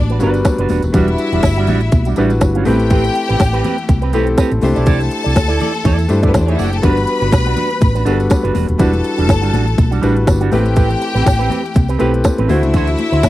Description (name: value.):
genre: disco.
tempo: 122 BPM.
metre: 4/4.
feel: swing 56% on 16ths.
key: E minor.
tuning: A4 = 439 Hz.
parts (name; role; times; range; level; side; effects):
clear studio string section; second line; 0.0-13.3 s; B3 to B5; -22 LUFS; left 3 dB; none.
warm grand piano; accompaniment; 0.0-13.3 s; G3 to C5; -19 LUFS; left 2 dB; none.
hollow-body short-scale fingered electric bass; bass; 0.0-13.3 s; D#1 to G2; -16 LUFS; equal; none.
electric guitar with an envelope filter; accompaniment; 0.1-13.3 s; G3 to D5; -20 LUFS; right 7 dB; none.
organic electronic drum kit; drums; 0.1-13.3 s; hi-hat, kick drum, snare drum; -13 LUFS; equal; none.
congas; percussion; 0.1-13.3 s; none; -24 LUFS; left 4 dB; none.
tambourine; percussion; 0.2-13.3 s; none; -38 LUFS; right 10 dB; none.
room: little or no reverb.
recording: dry, close 1970s-style studio recording.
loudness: -12 LUFS.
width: side -15 dB against mid.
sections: 0.0-13.3 A section.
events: none.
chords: 0.0 Gmaj7; 0.9 Em9; 2.7 Am9; 4.6 C69; 6.8 Gmaj7; 8.8 Em9; 10.5 Am9; 12.5 D9.